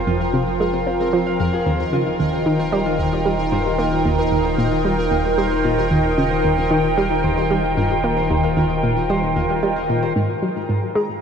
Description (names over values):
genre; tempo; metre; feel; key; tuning
ambient, sequencer-driven space music; 113 BPM; 4/4; straight; unclear; A4 = 445 Hz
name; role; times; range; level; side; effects
phased analog pad; sustained chords; 0.0-11.2 s; Eb3 to G5; -21 LUFS; right 1 dB; phaser, chorus
concert harp; arpeggios; 0.0-11.2 s; G#3 to F5; -26 LUFS; right 1 dB; auto-pan, ping-pong delay
warm sub bass; bass; 0.0-10.1 s; Eb1 to F1; -29 LUFS; equal; none
pulsing gated texture; texture; 0.0-11.2 s; Bb4 to A#5; -28 LUFS; left 3 dB; chorus, built-in reverb
analog pluck; riff; 0.1-11.0 s; Eb2 to C4; -21 LUFS; equal; chorus, ping-pong delay
room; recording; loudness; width
wet huge ambient reverb, RT60 8.2 s; dark, warm production; -17 LUFS; side -7 dB against mid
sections
0.0-10.2 A section; 10.2-11.2 B section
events
none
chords
0.0 Fmadd9; 1.7 Eb; 10.2 G#m